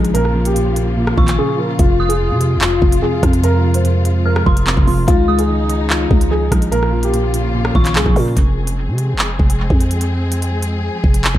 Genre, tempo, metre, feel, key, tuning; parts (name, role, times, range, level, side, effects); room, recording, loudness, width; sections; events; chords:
hip hop, drill; 146 BPM; 4/4; half-time; F minor; A4 = 441 Hz
soft electric-piano-like synth keys; accompaniment; 0.0-8.4 s; F2 to Ab3; -20 LUFS; equal; chorus, low-pass filter, analog delay
warm symphonic string section; sustained chords; 0.0-11.4 s; C3 to Ab4; -25 LUFS; left 2 dB
growling 808-style bass; bass; 0.0-11.4 s; F1 to C3; -17 LUFS; equal
drill drum kit; drums; 0.0-11.4 s; handclaps, hi-hat, kick drum, rim click; -16 LUFS; equal
dark concert grand piano; melody; 0.1-8.4 s; F4 to C5; -20 LUFS; left 1 dB; low-pass filter, analog delay
dark detuned synth bell; second line; 1.2-7.9 s; C6 to F6; -26 LUFS; right 2 dB; chorus, phaser, analog delay
little or no reverb; echo-heavy mix; -13 LUFS; side -13 dB against mid
0.0-8.4 A section; 8.4-11.4 B section
break 1.4-1.8
0.1 Bbm; 1.8 Fm; 5.1 Dbadd9; 6.7 Bbm; 8.4 Fm